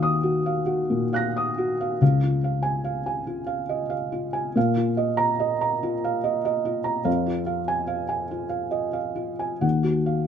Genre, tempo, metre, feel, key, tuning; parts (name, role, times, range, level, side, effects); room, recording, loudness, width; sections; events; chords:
neoclassical minimalist piano; 47 BPM (dotted quarters); 6/8; rubato; Db major; A4 = 440 Hz
felt-muted upright piano; solo; 0.0-10.3 s; Db2 to Bb6; -22 LUFS; equal
light reverb; minimal, uncompressed stereo recording; -22 LUFS; side -8 dB against mid
0.0-2.0 A section; 2.0-10.3 B section
0.0 Ebmadd9; 2.0 Db; 4.6 Bbsus4; 7.1 Fm; 9.6 Ebmadd9